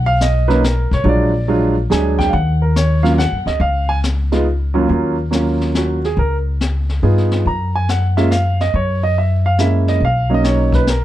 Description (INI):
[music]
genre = jazz piano trio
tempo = 141 BPM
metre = 3/4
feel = swing 67% on 8ths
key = Eb minor from 4.9 s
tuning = A4 = 441 Hz
[part]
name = warm grand piano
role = melody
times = 0.0-11.0 s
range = D#2 to Bb5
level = -17 LUFS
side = right 2 dB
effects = none
[part]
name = upright bass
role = bass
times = 0.0-11.0 s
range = A#1 to G2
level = -16 LUFS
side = left 1 dB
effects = none
[part]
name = jazz brush drum kit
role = drums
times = 0.2-11.0 s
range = brushed snare drum, hi-hat, kick drum, snare drum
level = -24 LUFS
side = left 3 dB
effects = none
[sound]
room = little or no reverb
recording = dark, warm production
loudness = -14 LUFS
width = side -13 dB against mid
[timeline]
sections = 0.0-4.9 A section; 4.9-11.0 B section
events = none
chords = 0.0 Bmaj9; 1.1 A#7b13; 2.3 D#m7; 3.6 C#; 4.9 Ebm7; 6.2 Db9; 7.4 Gbmaj7; 10.0 Bmaj7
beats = 0.20 0.63 | 1.05 1.48 1.91 | 2.33 2.76 3.18 | 3.61 4.04 4.46 | 4.89 5.32 5.74 | 6.17 6.59 7.02 | 7.45 7.88 8.30 | 8.73 9.15 9.58 | 10.01 10.43 10.86